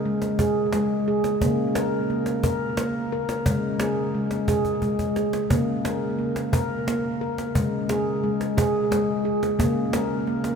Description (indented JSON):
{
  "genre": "world meditative, meditative tuned percussion",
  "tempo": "59 BPM (dotted quarters)",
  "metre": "6/8",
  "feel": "straight",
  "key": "unclear",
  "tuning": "A4 = 440 Hz",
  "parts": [
    { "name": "handpan", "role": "arpeggios", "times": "0.0-10.6 s", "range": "C#3 to A#4", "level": "-22 LUFS", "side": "equal", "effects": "tape echo" },
    { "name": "cajon", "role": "percussion", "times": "0.2-10.6 s", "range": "none", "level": "-29 LUFS", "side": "right 1 dB", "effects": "none" }
  ],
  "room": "wet cathedral reverb, RT60 6.0 s",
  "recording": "in a vast, echoing space",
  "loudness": "-22 LUFS",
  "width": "side -6 dB against mid",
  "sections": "0.0-10.6 A section",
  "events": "drum fill 4.7-5.5",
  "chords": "0.0 C#5; 1.4 A#m/C#; 3.5 C#5; 5.5 A#m/C#; 7.5 C#5; 9.6 A#m/C#",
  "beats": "0.39 | 1.41 2.43 | 3.46 4.48 | 5.50 6.53 | 7.55 8.57 | 9.59"
}